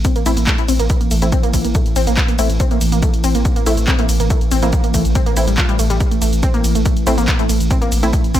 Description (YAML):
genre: driving peak-time techno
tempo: 141 BPM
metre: 4/4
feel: straight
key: A phrygian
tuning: A4 = 443 Hz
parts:
  - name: warbly dusty pluck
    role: riff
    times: 0.0-8.4 s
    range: G3 to F4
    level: -21 LUFS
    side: right 1 dB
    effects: chorus, tube saturation, sidechain pumping, tape echo
  - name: saturated sub bass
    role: bass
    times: 0.0-8.4 s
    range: A1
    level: -19 LUFS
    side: equal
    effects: tube saturation, sidechain pumping, low-pass filter
  - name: deep dark ambient pad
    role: drone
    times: 0.2-8.4 s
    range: A2 to E3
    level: -24 LUFS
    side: equal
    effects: chorus, built-in reverb, sidechain pumping
  - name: electronic kick drum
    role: drums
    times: 0.0-8.4 s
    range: none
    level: -17 LUFS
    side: equal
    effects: none
  - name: punchy analog drum machine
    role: drums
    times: 0.0-8.4 s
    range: handclaps, hi-hat, ride cymbal, shaker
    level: -24 LUFS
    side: equal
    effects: sidechain pumping on hats, sidechain pumping on cymbals, sidechain pumping on perc
  - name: filtered dub chord stab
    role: stabs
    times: 0.3-8.1 s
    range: A3 to E4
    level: -23 LUFS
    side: left 2 dB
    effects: chorus, cassette tape, sidechain pumping, ping-pong delay
room: digital ambience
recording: none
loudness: -13 LUFS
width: side -12 dB against mid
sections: 0.0-8.4 A section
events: none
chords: 0.0 Am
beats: 0.05 0.47 | 0.90 1.32 1.75 2.17 | 2.60 3.03 3.45 3.88 | 4.30 4.73 5.15 5.58 | 6.00 6.43 6.86 7.28 | 7.71 8.13